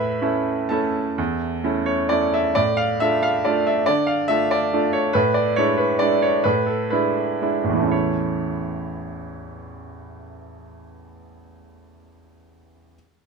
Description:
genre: classical, piano waltz.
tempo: 112-147 BPM.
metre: 3/4.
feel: rubato.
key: A major.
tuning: A4 = 440 Hz.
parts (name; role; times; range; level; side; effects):
bright baby grand piano; solo; 0.0-13.0 s; A1 to B5; -19 LUFS; right 1 dB; none.
room: light reverb.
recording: close, detailed microphones.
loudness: -18 LUFS.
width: side -5 dB against mid.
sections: 0.0-2.6 A section; 2.6-7.9 B section; 7.9-10.8 C section.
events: slowing down 4.5-7.9.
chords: 0.0 A; 2.6 Dm/A; 5.1 E7/A; 7.9 A.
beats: 0.22 0.71 | 1.18 1.64 2.11 | 2.57 3.01 3.45 | 3.88 4.29 4.72 | 5.14 5.57 6.01 | 6.45 6.90 7.41 | 7.92 8.41 8.90 | 9.37 9.85 10.34.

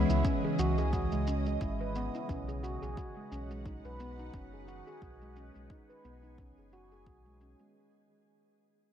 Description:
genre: organic downtempo.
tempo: 88 BPM.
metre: 4/4.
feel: swing 56% on 16ths.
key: unclear.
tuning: A4 = 439 Hz.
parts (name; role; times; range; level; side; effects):
ethereal airy pad; sustained chords; 0.0-7.7 s; C#3 to D#5; -37 LUFS; right 1 dB; ensemble chorus, built-in reverb, phaser, sidechain pumping.
handpan; arpeggios; 0.0-7.7 s; G#3 to B4; -38 LUFS; equal; low-pass filter, digital delay.
warm sub bass; bass; 0.0-7.6 s; F#1 to C#2; -35 LUFS; equal; tube saturation.
bronze singing bowl; texture; 0.0-7.8 s; C#5; -54 LUFS; left 5 dB; none.
shaker; drums; 0.1-7.7 s; none; -51 LUFS; left 1 dB; low-pass filter on snare, low-pass filter on perc.
electronic kick drum; drums; 0.2-7.2 s; none; -37 LUFS; equal; none.
room: light reverb, digital ambience.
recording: none.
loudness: -31 LUFS.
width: side -9 dB against mid.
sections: 0.0-7.7 A section.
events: fade-out 0.0-7.7; filter sweep on handpan 0.0-7.7.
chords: 0.0 C#m; 2.3 B.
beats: 0.25 0.93 1.61 | 2.29 2.98 3.66 4.34 | 5.02 5.70 6.38 7.07.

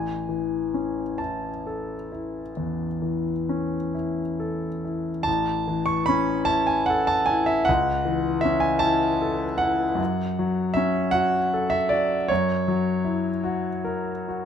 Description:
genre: classical, romantic nocturne for solo piano.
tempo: 43-54 BPM (dotted quarters).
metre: 12/8.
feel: rubato.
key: A major.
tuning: A4 = 439 Hz.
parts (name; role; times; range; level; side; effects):
warm concert grand piano; solo; 0.0-14.5 s; A1 to C#6; -22 LUFS; left 1 dB; none.
room: moderate stone room reverb, RT60 1.1 s.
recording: close, detailed microphones.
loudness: -22 LUFS.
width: side -8 dB against mid.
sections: 0.0-5.3 A section; 5.3-14.5 B section.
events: none.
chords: 0.0 A; 7.7 A/C#; 10.0 F#m; 12.3 F#7.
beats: 1.21 2.58 3.94 | 5.27 6.49 7.68 8.82 | 9.99 11.14 12.30 13.43.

